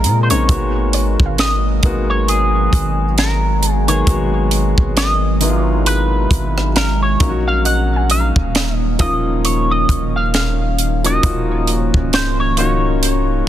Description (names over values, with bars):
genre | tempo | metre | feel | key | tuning
contemporary R&B | 67 BPM | 4/4 | swing 58% on 16ths | unclear | A4 = 437 Hz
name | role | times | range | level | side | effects
electric guitar with an envelope filter | melody | 0.0-13.4 s | Ab4 to Gb5 | -21 LUFS | equal | digital delay
warm grand piano | accompaniment | 0.0-13.5 s | C3 to Ab4 | -22 LUFS | left 2 dB | none
deep dark ambient pad | sustained chords | 0.0-13.5 s | Bb2 to Bb4 | -23 LUFS | right 1 dB | chorus, built-in reverb, sidechain pumping
long sustained 808-style bass | bass | 0.0-13.4 s | Db1 to Bb2 | -18 LUFS | equal | none
crisp fusion drum kit | drums | 0.0-13.3 s | hi-hat, kick drum, rim click, snare drum | -18 LUFS | right 1 dB | none
soft round pluck | texture | 0.9-10.4 s | Db5 to Bb5 | -30 LUFS | right 4 dB | wide subtle chorus, digital delay
room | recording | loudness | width
small room ambience | dense, heavily limited modern master | -13 LUFS | side -12 dB against mid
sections
0.0-13.5 A section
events
none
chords
0.5 Abm9; 7.2 Ebm9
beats
| 0.49 1.38 2.28 3.17 | 4.07 4.97 5.86 6.76 | 7.65 8.55 9.44 10.34 | 11.23 12.13 13.03